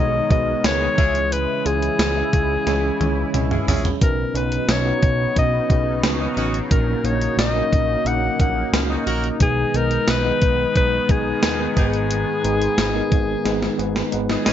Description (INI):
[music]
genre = 1980s-style pop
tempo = 89 BPM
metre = 4/4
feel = straight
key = G# minor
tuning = A4 = 440 Hz
[part]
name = clear alto saxophone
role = melody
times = 0.0-14.5 s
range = C#4 to F#5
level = -22 LUFS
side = left 3 dB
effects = plate reverb
[part]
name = mellow tine electric piano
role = accompaniment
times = 0.0-14.5 s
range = G#2 to E5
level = -24 LUFS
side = right 1 dB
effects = medium stereo tremolo, plate reverb
[part]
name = sweeping resonant pad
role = sustained chords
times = 0.0-14.5 s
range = B2 to E4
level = -29 LUFS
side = equal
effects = chorus, plate reverb
[part]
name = fat analog bass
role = bass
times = 0.0-14.5 s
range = G#1 to D#2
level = -25 LUFS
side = equal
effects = none
[part]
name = gated 80s digital drum machine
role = drums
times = 0.3-14.5 s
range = hi-hat, kick drum, snare drum, tambourine, toms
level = -21 LUFS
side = right 1 dB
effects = gated reverb, gated reverb snare
[part]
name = warm horn section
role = stabs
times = 0.8-14.5 s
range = B3 to A#4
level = -27 LUFS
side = right 1 dB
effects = plate reverb
[sound]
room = moderate booth ambience, RT60 0.2 s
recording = nothing above 7.6 kHz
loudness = -17 LUFS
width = side -10 dB against mid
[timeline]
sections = 0.0-14.5 A section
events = drum fill 2.7-4.0, 13.5-14.5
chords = 0.0 G#m/B; 1.0 C#m; 4.0 Badd9; 6.7 D#m7/A#; 9.4 G#m/B; 11.8 G#m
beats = 0.64 | 1.32 1.99 2.66 3.34 | 4.01 4.69 5.36 6.04 | 6.71 7.38 8.06 8.73 | 9.41 10.08 10.75 11.43 | 12.10 12.78 13.45 14.12